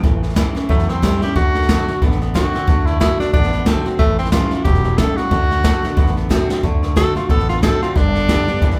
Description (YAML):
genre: rockabilly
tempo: 182 BPM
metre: 4/4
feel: swing 58% on 8ths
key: D major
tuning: A4 = 442 Hz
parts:
  - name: picked steel-string acoustic guitar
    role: accompaniment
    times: 0.0-8.8 s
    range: E2 to G4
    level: -26 LUFS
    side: equal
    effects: none
  - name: twangy electric guitar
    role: riff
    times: 0.0-8.8 s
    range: G2 to C4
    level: -28 LUFS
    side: equal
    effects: none
  - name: upright bass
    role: bass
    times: 0.0-8.8 s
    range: E1 to E2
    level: -24 LUFS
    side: equal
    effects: none
  - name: jazz brush drum kit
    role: drums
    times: 0.0-8.8 s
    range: hi-hat, kick drum, snare drum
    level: -20 LUFS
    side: equal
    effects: none
  - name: breathy tenor saxophone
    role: melody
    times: 0.7-8.8 s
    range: A3 to A4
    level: -23 LUFS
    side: equal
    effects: none
room: light reverb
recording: band playing live in one room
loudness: -16 LUFS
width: mono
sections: 0.0-6.6 A section; 6.6-8.8 A section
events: tenor saxophone solo 0.0-8.8; drum fill 6.5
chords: 0.0 A7; 1.4 D; 4.0 A7; 5.3 D; 8.0 G